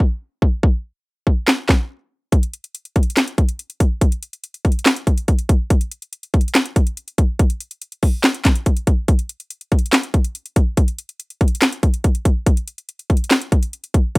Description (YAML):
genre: hip hop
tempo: 142 BPM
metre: 4/4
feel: half-time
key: none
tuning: none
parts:
  - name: trap drum kit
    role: drums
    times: 0.0-14.2 s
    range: handclaps, hi-hat, kick drum, snare drum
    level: -15 LUFS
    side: equal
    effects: none
room: light reverb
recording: rough home demo mix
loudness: -16 LUFS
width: side -26 dB against mid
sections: 0.0-14.2 A section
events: break 0.0-2.3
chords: none